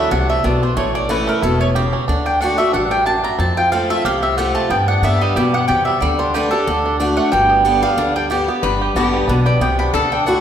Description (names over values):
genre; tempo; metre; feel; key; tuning
bluegrass; 183 BPM; 4/4; swing 55% on 8ths; G major; A4 = 440 Hz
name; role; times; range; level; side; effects
mandolin; melody; 0.0-10.4 s; A4 to B5; -18 LUFS; equal; none
picked swing-style acoustic guitar; accompaniment; 0.0-10.4 s; F2 to G4; -20 LUFS; left 1 dB; none
bluegrass banjo; arpeggios; 0.0-10.4 s; D3 to G4; -21 LUFS; right 4 dB; none
upright bass; bass; 0.0-10.4 s; E1 to G2; -21 LUFS; equal; none
lap resonator guitar; second line; 8.6-10.4 s; G4 to B4; -22 LUFS; left 5 dB; none
room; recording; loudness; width
wet recital hall reverb, RT60 1.6 s; recorded in a church or concert hall; -14 LUFS; side -9 dB against mid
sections
0.0-8.6 A section; 8.6-10.4 B section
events
mandolin solo 0.0-8.6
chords
0.0 Dadd9; 0.8 A; 2.1 D; 3.4 F; 4.7 G; 6.0 Dsus4; 6.7 D; 7.3 G